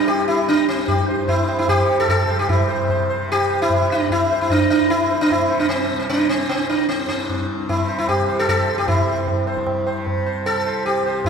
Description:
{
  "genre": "indian classical, Hindustani",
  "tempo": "150 BPM",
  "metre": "4/4",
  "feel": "straight",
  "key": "C raga bhupali",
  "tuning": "A4 = 440 Hz",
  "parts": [
    { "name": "sitar", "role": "melody", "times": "0.0-11.3 s", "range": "C4 to C5", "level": "-18 LUFS", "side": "right 1 dB", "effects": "none" },
    { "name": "tanpura", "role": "drone", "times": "0.0-11.3 s", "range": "C2 to C3", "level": "-29 LUFS", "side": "left 1 dB", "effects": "none" },
    { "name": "tabla", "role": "percussion", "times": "0.1-11.3 s", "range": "none", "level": "-25 LUFS", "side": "left 1 dB", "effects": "none" }
  ],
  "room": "wet church reverb, RT60 3.5 s",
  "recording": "recorded in a church or concert hall",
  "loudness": "-17 LUFS",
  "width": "side -6 dB against mid",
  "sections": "0.0-2.5 A section; 2.5-11.3 A section",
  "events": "none",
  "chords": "none"
}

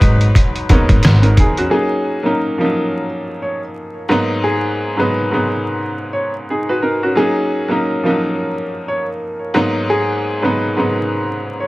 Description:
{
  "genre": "hip hop, boom-bap hip-hop",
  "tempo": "88 BPM",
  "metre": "4/4",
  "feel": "swing 57% on 16ths",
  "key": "G# minor",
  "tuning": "A4 = 440 Hz",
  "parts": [
    { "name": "warm upright piano", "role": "melody", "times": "0.0-11.7 s", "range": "G#4 to C#5", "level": "-21 LUFS", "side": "left 1 dB", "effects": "high-pass filter, low-pass filter, plate reverb, tape echo" },
    { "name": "clear upright piano", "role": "accompaniment", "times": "0.0-11.7 s", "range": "G#2 to B4", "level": "-17 LUFS", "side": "equal", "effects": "cassette tape, high-pass filter, low-pass filter, plate reverb" },
    { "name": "mellow horn section", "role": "stabs", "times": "0.0-1.3 s", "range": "F#3 to B4", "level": "-26 LUFS", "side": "left 2 dB", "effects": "high-pass filter, low-pass filter, plate reverb, tape echo" },
    { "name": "upright bass", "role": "bass", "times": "0.0-1.7 s", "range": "G#1 to E2", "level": "-14 LUFS", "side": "equal", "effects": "none" },
    { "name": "trip hop sampler-style drum kit", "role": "drums", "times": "0.0-1.7 s", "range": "hi-hat, kick drum, rim click, snare drum", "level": "-12 LUFS", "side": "equal", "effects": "none" }
  ],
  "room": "moderate studio reverb, RT60 0.7 s",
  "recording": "vinyl crackle",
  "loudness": "-14 LUFS",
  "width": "side -19 dB against mid",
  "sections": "0.0-1.7 A section; 1.7-11.7 B section",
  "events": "none",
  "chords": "0.0 G#m9; 1.7 D#m7; 4.1 G#m9; 7.2 D#m7; 9.6 G#m9"
}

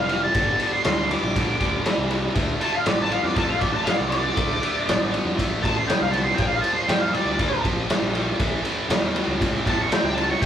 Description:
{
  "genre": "blues rock power trio and southern rock",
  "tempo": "119 BPM",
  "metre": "4/4",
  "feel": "straight",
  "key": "D minor",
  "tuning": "A4 = 440 Hz",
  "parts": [
    { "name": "octave-fuzz lead guitar", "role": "melody", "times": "0.0-10.5 s", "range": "D5 to D6", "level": "-24 LUFS", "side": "equal", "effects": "wah, distortion" },
    { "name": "tight distorted guitar", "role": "riff", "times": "0.0-10.5 s", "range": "G2 to B3", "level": "-27 LUFS", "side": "equal", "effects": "distortion" },
    { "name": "fuzz fingered electric bass", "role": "bass", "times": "0.0-10.5 s", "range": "F1 to F2", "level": "-30 LUFS", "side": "equal", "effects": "overdrive" },
    { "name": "raw garage drum kit", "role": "drums", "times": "0.1-10.5 s", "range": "kick drum, ride cymbal, snare drum", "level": "-23 LUFS", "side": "equal", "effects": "none" }
  ],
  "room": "moderate small room reverb, RT60 0.6 s",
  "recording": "rough rehearsal-room recording, tube saturation",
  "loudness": "-20 LUFS",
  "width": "side -9 dB against mid",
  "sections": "0.0-10.5 A section",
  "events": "lead electric guitar solo 0.0-10.5",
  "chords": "0.0 Gmadd9; 2.4 Dm7; 6.4 Bb; 8.4 A"
}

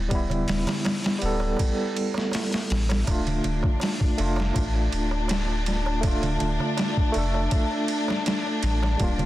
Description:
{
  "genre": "trip hop",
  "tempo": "81 BPM",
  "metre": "4/4",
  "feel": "straight",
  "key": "D minor",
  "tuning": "A4 = 445 Hz",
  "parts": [
    { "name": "barky tine electric piano", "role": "accompaniment", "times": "0.0-9.3 s", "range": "G3 to A4", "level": "-28 LUFS", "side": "equal", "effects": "overdrive, tremolo, tape echo" },
    { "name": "warm sub bass", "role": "bass", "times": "0.0-9.3 s", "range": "D1 to A1", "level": "-26 LUFS", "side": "equal", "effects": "none" },
    { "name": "boom bap sampler-style drum kit", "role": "drums", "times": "0.1-9.3 s", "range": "hi-hat, kick drum, ride cymbal, snare drum", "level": "-27 LUFS", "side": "equal", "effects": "overdrive" },
    { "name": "darbuka", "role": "percussion", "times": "0.1-9.3 s", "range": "none", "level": "-34 LUFS", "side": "right 3 dB", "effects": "none" },
    { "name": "warm studio violin section", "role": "sustained chords", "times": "3.1-9.3 s", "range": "D4", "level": "-30 LUFS", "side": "left 3 dB", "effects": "none" }
  ],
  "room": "light reverb",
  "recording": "dense, heavily limited modern master",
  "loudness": "-22 LUFS",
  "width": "side -15 dB against mid",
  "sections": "0.0-9.3 A section",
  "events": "none",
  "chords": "0.0 G6/D; 3.1 Dm"
}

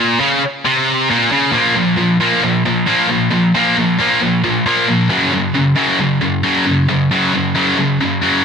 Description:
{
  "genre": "rock",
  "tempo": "135 BPM",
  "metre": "4/4",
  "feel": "straight",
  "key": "Bb minor",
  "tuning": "A4 = 440 Hz",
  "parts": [
    { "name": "scooped high-gain guitar", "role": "solo", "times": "0.0-8.4 s", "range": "Gb2 to Bb3", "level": "-12 LUFS", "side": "equal", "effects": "distortion, digital delay" }
  ],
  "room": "light reverb",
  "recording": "none",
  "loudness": "-12 LUFS",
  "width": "side -6 dB against mid",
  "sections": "0.0-1.5 A section; 1.5-8.4 B section",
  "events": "none",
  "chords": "0.0 Bbm; 1.5 Bb5; 5.1 Gb5"
}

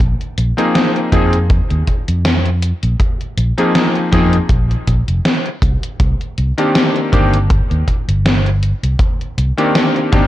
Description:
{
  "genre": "vaporwave",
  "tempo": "80 BPM",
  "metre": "4/4",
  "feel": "swing 55% on 16ths",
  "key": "unclear",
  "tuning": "A4 = 440 Hz",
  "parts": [
    { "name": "fingered electric bass", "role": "bass", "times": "0.0-10.3 s", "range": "F1 to F2", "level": "-15 LUFS", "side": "equal", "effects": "none" },
    { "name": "gated 80s digital drum machine", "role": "drums", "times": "0.0-10.3 s", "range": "hi-hat, snare drum", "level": "-17 LUFS", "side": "equal", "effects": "gated reverb, gated reverb snare, overdrive" },
    { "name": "kick drum", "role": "drums", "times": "0.0-10.3 s", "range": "none", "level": "-16 LUFS", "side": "equal", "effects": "none" },
    { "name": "clear electric grand piano", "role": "accompaniment", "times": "0.6-10.3 s", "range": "Eb3 to Ab4", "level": "-16 LUFS", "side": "left 1 dB", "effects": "analog chorus, analog delay" }
  ],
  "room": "small room ambience",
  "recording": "cassette tape",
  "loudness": "-13 LUFS",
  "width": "side -14 dB against mid",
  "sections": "0.0-10.3 A section",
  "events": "none",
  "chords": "0.0 Bb9sus4; 5.6 Cm9"
}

